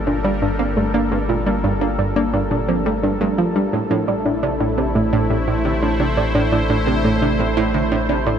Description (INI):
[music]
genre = ambient, sequencer-driven space music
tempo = 86 BPM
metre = 4/4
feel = straight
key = unclear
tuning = A4 = 440 Hz
[part]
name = sweeping resonant pad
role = sustained chords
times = 0.0-8.4 s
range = G3 to C5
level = -23 LUFS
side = equal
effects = chorus
[part]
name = soft round pluck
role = arpeggios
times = 0.0-8.4 s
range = D3 to D5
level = -21 LUFS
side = right 2 dB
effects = chorus, auto-pan, analog delay
[part]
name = round analog bass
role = bass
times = 0.0-8.4 s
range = G1 to A1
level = -25 LUFS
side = left 1 dB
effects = none
[part]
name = analog pluck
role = riff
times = 0.1-8.4 s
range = G2 to Bb3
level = -21 LUFS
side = right 1 dB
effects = chorus, analog delay
[sound]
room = wet huge ambient reverb, RT60 8.1 s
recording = dreamy mix soaked in reverb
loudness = -16 LUFS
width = side -8 dB against mid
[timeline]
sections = 0.0-8.4 A section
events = fade-in on analog synth pad 0.0-8.4; filter sweep on synth arpeggio sound 0.0-8.4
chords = 0.0 Gm; 3.7 Am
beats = 0.24 | 0.94 1.64 2.34 3.03 | 3.73 4.43 5.13 5.83 | 6.52 7.22 7.92